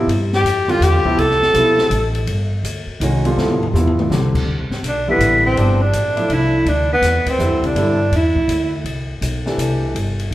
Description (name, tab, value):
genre	modal jazz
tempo	164 BPM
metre	3/4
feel	swing 65% on 8ths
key	unclear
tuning	A4 = 440 Hz
part	warm grand piano	accompaniment	0.0-9.9 s	C3 to A4	-20 LUFS	equal	none
part	upright bass	bass	0.0-10.3 s	G1 to G2	-19 LUFS	equal	none
part	open jazz drum kit	drums	0.1-10.3 s	crash cymbal, hi-hat, kick drum, ride cymbal, snare drum, toms	-26 LUFS	left 2 dB	none
part	breathy tenor saxophone	melody	0.4-2.2, 4.9-8.7 s	B3 to A4	-16 LUFS	equal	none
room	wet large studio reverb, RT60 1.4 s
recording	heard from further back in the room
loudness	-14 LUFS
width	side -15 dB against mid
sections	0.0-4.5 A section; 4.5-10.3 B section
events	drum fill 3.4-4.1; tenor saxophone solo 4.5-10.3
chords	0.1 G13sus4; 4.5 G9sus4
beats	| 0.09 0.45 0.82 | 1.18 1.55 1.91 | 2.28 2.64 3.01 | 3.37 3.74 4.10 | 4.47 4.83 5.20 | 5.57 5.93 6.30 | 6.66 7.03 7.39 | 7.76 8.12 8.49 | 8.85 9.22 9.59 | 9.95 10.32